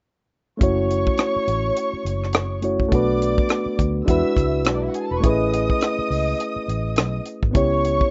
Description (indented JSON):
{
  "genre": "lush 1970s-style soul",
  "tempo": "104 BPM",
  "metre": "4/4",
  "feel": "swing 58% on 16ths",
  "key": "unclear",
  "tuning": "A4 = 441 Hz",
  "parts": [
    { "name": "warm studio violin section", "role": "second line", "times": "0.6-8.1 s", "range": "D4 to E6", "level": "-29 LUFS", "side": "equal", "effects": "none" },
    { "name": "reed electric piano", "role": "accompaniment", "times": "0.6-8.1 s", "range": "G#3 to C#5", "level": "-24 LUFS", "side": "equal", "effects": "none" },
    { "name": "vintage muted fingered electric bass", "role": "bass", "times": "0.6-8.0 s", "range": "E1 to E2", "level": "-27 LUFS", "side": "equal", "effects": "none" },
    { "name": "tight funk drum kit", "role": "drums", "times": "0.6-8.1 s", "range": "hi-hat, kick drum, rim click", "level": "-24 LUFS", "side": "equal", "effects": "none" }
  ],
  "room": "light reverb",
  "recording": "rough home demo mix, nothing above 7.8 kHz",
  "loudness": "-21 LUFS",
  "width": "mono",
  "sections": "0.6-8.1 A section",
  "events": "none",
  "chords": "0.6 F#m7; 2.9 Bm7; 4.1 E9; 5.2 Amaj9; 7.5 C#m7b5"
}